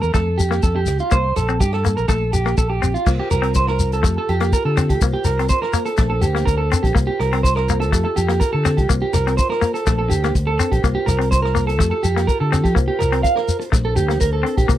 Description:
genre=highlife guitar band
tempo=124 BPM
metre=4/4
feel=straight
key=unclear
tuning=A4 = 439 Hz
part: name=semi-hollow electric guitar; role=accompaniment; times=0.0-14.8 s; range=A3 to C4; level=-24 LUFS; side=left 7 dB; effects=none
part: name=electric guitar at the edge of break-up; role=arpeggios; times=0.0-14.7 s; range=F4 to F5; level=-21 LUFS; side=right 4 dB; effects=vibrato effect, slapback echo
part: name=fingered electric bass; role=bass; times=0.0-14.8 s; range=Bb1 to F3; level=-21 LUFS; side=equal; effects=none
part: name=shekere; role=percussion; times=0.0-14.8 s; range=none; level=-23 LUFS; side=left 2 dB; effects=none
part: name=vintage drum kit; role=drums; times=0.1-14.8 s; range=crash cymbal, hi-hat, kick drum, rim click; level=-20 LUFS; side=equal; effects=none
part: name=mellow tonewheel organ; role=sustained chords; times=3.1-14.8 s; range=D4 to C5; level=-30 LUFS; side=left 2 dB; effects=chorus vibrato, slow rotary speaker
room=little or no reverb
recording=dry, close 1970s-style studio recording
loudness=-16 LUFS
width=side -12 dB against mid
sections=0.0-3.1 A section; 3.1-14.8 B section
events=none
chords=0.1 Fadd9; 1.1 C5; 2.1 Bbsus2; 3.1 C7sus4; 4.0 Fadd9; 5.0 C7sus4; 6.0 Bbadd9; 7.0 C7sus4; 7.9 Fadd9; 8.9 C7sus4; 9.9 Bbadd9; 10.8 C7sus4; 11.8 Fadd9; 12.8 C7sus4; 13.7 Bbadd9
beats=0.13 0.62 | 1.11 1.60 2.09 2.58 | 3.07 3.56 4.04 4.53 | 5.01 5.50 5.99 6.47 | 6.96 7.44 7.93 8.41 | 8.89 9.38 9.86 10.34 | 10.82 11.31 11.79 12.27 | 12.75 13.24 13.72 14.20 | 14.68

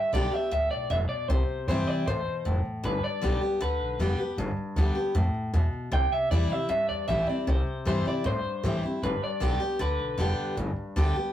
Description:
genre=rockabilly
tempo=155 BPM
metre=4/4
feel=straight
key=G mixolydian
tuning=A4 = 440 Hz
part: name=electric guitar through a small old amp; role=melody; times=0.0-10.5 s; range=B4 to G5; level=-30 LUFS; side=equal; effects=none
part: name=picked steel-string acoustic guitar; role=accompaniment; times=0.0-11.3 s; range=G2 to G4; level=-30 LUFS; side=left 1 dB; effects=none
part: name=upright bass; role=bass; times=0.1-11.2 s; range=F1 to A2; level=-28 LUFS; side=equal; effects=none
room=light reverb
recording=rough rehearsal-room recording, warm saturation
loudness=-25 LUFS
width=side -11 dB against mid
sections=0.0-11.3 A section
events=none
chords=0.0 G; 1.3 C; 2.8 G; 5.9 C; 9.0 G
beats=0.13 0.52 0.91 | 1.29 1.68 2.06 2.45 | 2.84 3.23 3.61 4.00 | 4.38 4.77 5.16 5.54 | 5.93 6.32 6.71 7.09 | 7.48 7.87 8.25 8.64 | 9.03 9.41 9.80 10.19 | 10.57 10.96

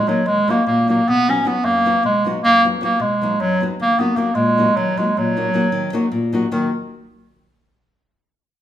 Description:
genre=balkan folk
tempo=309 BPM (eighths)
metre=7/8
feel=straight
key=Eb minor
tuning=A4 = 440 Hz
part: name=bright clarinet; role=melody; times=0.0-6.7 s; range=Eb3 to Db4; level=-16 LUFS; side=right 1 dB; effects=none
part: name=nylon-string guitar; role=accompaniment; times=0.0-6.7 s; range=F#2 to Gb4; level=-21 LUFS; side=left 2 dB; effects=none
room=wet large studio reverb, RT60 1.1 s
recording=band playing live in one room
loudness=-15 LUFS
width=side -11 dB against mid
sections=0.0-6.5 A section; 6.5-7.9 B section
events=none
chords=0.0 Ebm; 1.1 B; 3.8 Ebm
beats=0.10 0.30 0.49 0.69 0.88 | 1.08 1.27 1.47 1.66 1.86 2.05 2.25 | 2.44 2.64 2.83 3.02 3.22 3.41 3.61 | 3.80 4.00 4.19 4.39 4.58 4.77 4.97 | 5.16 5.36 5.55 5.75 5.94 6.13 6.33 | 6.52

